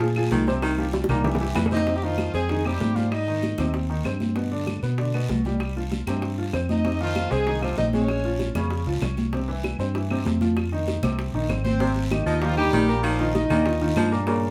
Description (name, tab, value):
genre	latin, salsa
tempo	193 BPM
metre	4/4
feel	straight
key	F minor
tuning	A4 = 440 Hz
part	growling baritone saxophone	second line	0.0-1.7, 11.8-14.5 s	C3 to F3	-31 LUFS	equal	none
part	bright baby grand piano	accompaniment	0.0-14.5 s	Bb2 to Db5	-30 LUFS	equal	none
part	fingered electric bass	bass	0.0-14.5 s	Ab1 to B2	-29 LUFS	equal	none
part	bongos	percussion	0.0-14.5 s	none	-34 LUFS	equal	none
part	congas	percussion	0.0-14.5 s	none	-31 LUFS	equal	none
part	guiro	percussion	0.0-14.5 s	none	-45 LUFS	equal	none
part	claves	percussion	0.2-14.1 s	none	-41 LUFS	equal	none
part	warm horn section	melody	1.7-3.7, 6.7-8.5, 11.6-13.9 s	F3 to Eb5	-29 LUFS	equal	none
room	wet studio ambience, RT60 0.5 s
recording	band playing live in one room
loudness	-24 LUFS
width	mono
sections	0.0-1.9 A section; 1.9-11.8 B section; 11.8-14.5 A section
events	drum fill 0.9-1.9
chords	0.0 Bb7(no3); 0.6 C7sus4; 1.2 C; 1.9 Fm7; 3.1 Abmaj7; 4.4 G; 5.6 Csus4; 6.8 Fm7; 8.1 Bbm7; 9.3 C; 10.6 Fm7; 11.8 Abmaj7; 13.0 Bbsus4